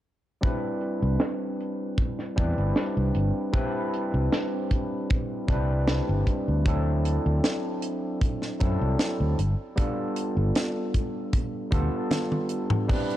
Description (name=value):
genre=vaporwave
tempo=77 BPM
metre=4/4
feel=straight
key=C major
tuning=A4 = 443 Hz
part: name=overdriven tine electric piano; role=accompaniment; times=0.4-13.2 s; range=F#3 to B4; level=-29 LUFS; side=equal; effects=wide subtle chorus, tape echo
part: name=kick drum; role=drums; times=0.4-13.1 s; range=none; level=-26 LUFS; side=equal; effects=none
part: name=tight funk drum kit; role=drums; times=0.4-13.2 s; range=crash cymbal, hi-hat, snare drum, toms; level=-28 LUFS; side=equal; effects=low-pass filter on hats, low-pass filter on toms, low-pass filter on cymbals, low-pass filter on snare, low-pass filter on room
part: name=fretless electric bass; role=bass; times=1.0-11.9 s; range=G1 to F#2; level=-24 LUFS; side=equal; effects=none
room=studio reverb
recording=dry, gritty hardware recording, cassette tape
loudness=-24 LUFS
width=side -13 dB against mid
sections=0.4-12.9 A section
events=filter sweep on drum 0.4-12.9; kick drops out 12.1-12.9; drum fill 12.1-12.9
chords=0.4 Cmaj7; 6.7 D7; 9.4 G7